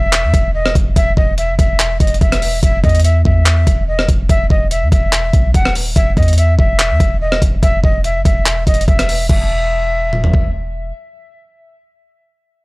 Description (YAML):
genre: hip hop, trap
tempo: 144 BPM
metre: 4/4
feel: half-time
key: unclear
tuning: A4 = 441 Hz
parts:
  - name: breathy jazz flute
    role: melody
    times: 0.0-10.5 s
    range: D#5 to F#5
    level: -19 LUFS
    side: equal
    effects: low-pass filter
  - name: clean 808-style bass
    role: bass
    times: 0.0-10.9 s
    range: D#1 to E2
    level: -16 LUFS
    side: equal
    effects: none
  - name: breakbeat sampler-style drum kit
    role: drums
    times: 0.1-10.4 s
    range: crash cymbal, handclaps, hi-hat, kick drum, rim click, toms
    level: -14 LUFS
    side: equal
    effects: overdrive
room: digital ambience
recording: dry, gritty hardware recording, cassette tape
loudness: -11 LUFS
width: side -24 dB against mid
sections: 0.0-9.3 A section; 9.3-12.6 B section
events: none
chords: 0.0 N.C.; 2.6 E5; 6.0 N.C.